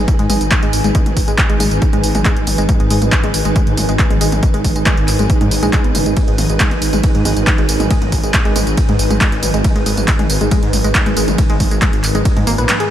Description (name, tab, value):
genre	driving peak-time techno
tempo	138 BPM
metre	4/4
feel	straight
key	G# minor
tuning	A4 = 440 Hz
part	detuned saw bass	bass	0.0-12.7 s	F#1 to G#2	-19 LUFS	equal	sidechain pumping
part	metallic inharmonic drone	drone	0.7-12.9 s	G#2 to D#3	-23 LUFS	right 2 dB	chorus, built-in reverb, phaser, sidechain pumping
part	granular cloud pad	texture	0.0-12.9 s	D#4 to G#5	-23 LUFS	right 2 dB	built-in reverb, analog chorus, sidechain pumping
part	electronic kick drum	drums	0.1-12.3 s	none	-15 LUFS	equal	overdrive
part	punchy analog drum machine	drums	0.1-12.9 s	handclaps, hi-hat, ride cymbal, tambourine, toms	-19 LUFS	equal	overdrive, sidechain pumping on hats, sidechain pumping on toms, sidechain pumping on cymbals, sidechain pumping on perc
part	warbly dusty pluck	riff	0.2-12.9 s	G#3 to G#4	-21 LUFS	left 1 dB	chorus, sidechain pumping, tape echo
room	light reverb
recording	none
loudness	-12 LUFS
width	side -11 dB against mid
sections	0.0-12.9 A section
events	none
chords	0.0 G#m